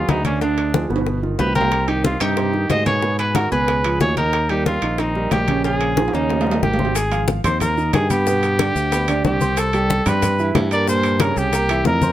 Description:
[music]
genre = Afro-Cuban jazz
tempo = 184 BPM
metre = 4/4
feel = straight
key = Eb major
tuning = A4 = 440 Hz
[part]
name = clear trumpet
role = melody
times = 0.0-12.1 s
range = Db4 to Eb5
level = -21 LUFS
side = equal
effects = none
[part]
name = bowl-back mandolin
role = second line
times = 0.0-6.8 s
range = Ab3 to C5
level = -29 LUFS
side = left 1 dB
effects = none
[part]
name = warm grand piano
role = accompaniment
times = 0.0-12.1 s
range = Bb2 to C6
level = -23 LUFS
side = right 4 dB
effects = none
[part]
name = modern bright fingered electric bass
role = bass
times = 0.0-12.1 s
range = G1 to Ab2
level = -22 LUFS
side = equal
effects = none
[part]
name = bongos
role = percussion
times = 0.1-12.1 s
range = none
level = -27 LUFS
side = left 7 dB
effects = none
[part]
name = congas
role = percussion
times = 0.1-12.1 s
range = none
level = -23 LUFS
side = left 3 dB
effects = none
[part]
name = timbales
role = percussion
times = 0.1-12.0 s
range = none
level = -26 LUFS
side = right 3 dB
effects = none
[part]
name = maracas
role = percussion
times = 7.0-12.1 s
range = none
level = -34 LUFS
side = left 6 dB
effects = none
[sound]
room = light reverb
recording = none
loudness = -16 LUFS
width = side -13 dB against mid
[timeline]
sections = 0.0-7.0 A section; 7.0-12.1 B section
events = drum fill 0.7-1.7, 6.0-7.0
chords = 0.4 Ddim; 1.1 Gaug7; 1.7 Cm; 3.0 Abm7; 3.7 Db9; 4.3 Eb69; 5.6 Bbm7; 6.3 Eb7; 7.0 Ab6; 8.3 G; 9.6 Cmaj9; 10.9 Gdim; 11.5 C7

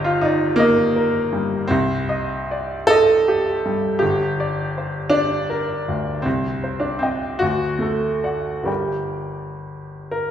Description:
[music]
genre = classical, romantic nocturne for solo piano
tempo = 40-57 BPM (dotted quarters)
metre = 6/8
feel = rubato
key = G minor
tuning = A4 = 440 Hz
[part]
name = clear baby grand piano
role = solo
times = 0.0-10.3 s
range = G1 to G5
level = -18 LUFS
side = equal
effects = none
[sound]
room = wet recital hall reverb, RT60 1.4 s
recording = heard from further back in the room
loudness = -18 LUFS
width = side -9 dB against mid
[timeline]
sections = 0.0-10.3 A section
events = none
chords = 0.0 Eb/G; 1.7 Cm; 4.0 Gm; 6.3 Cm; 7.4 D; 8.7 Gm

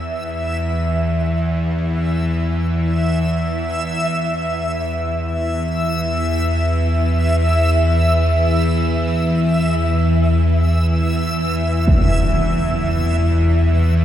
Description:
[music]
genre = dark ambient drone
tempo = free time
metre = none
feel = none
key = unclear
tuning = A4 = 440 Hz
[part]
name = bowed-like drone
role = drone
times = 0.0-14.0 s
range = E2 to E3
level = -17 LUFS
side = equal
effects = built-in reverb
[part]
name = backwards swelling texture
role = texture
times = 0.0-14.0 s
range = E5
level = -23 LUFS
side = equal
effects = built-in reverb
[part]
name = impact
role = percussion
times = 11.9-12.1 s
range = none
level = -19 LUFS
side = equal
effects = low-pass filter on sfx
[sound]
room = wet cathedral reverb, RT60 5.0 s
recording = none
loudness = -16 LUFS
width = side -11 dB against mid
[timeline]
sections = 0.0-14.0 A section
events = fade-in on synth drone 0.0-14.0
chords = none

